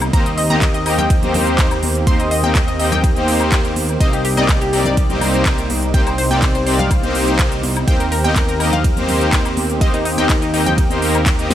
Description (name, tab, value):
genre	progressive house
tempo	124 BPM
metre	4/4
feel	straight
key	unclear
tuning	A4 = 440 Hz
part	lush unison pad	sustained chords	0.0-11.5 s	C3 to G4	-23 LUFS	right 2 dB	chorus, sidechain pumping
part	analog pluck	arpeggios	0.0-11.5 s	Eb4 to C6	-23 LUFS	left 2 dB	chorus, sidechain pumping, digital delay
part	fat analog bass	bass	0.0-11.5 s	C2 to Eb2	-22 LUFS	equal	sidechain pumping
part	big-room dance drum kit	drums	0.0-11.5 s	handclaps, hi-hat, ride cymbal, snare drum	-24 LUFS	right 1 dB	small room reverb
part	woodblock and congas	percussion	0.0-11.5 s	none	-27 LUFS	left 3 dB	sidechain pumping on perc
part	soft supersaw	stabs	0.1-11.5 s	Bb3 to F5	-20 LUFS	left 1 dB	sidechain pumping, digital delay
part	electronic kick drum	drums	0.1-11.4 s	none	-16 LUFS	equal	small room reverb
room	light reverb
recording	none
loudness	-13 LUFS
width	side -11 dB against mid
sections	0.0-11.5 A section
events	none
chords	0.1 Eb6; 4.0 Cm7; 7.9 Eb6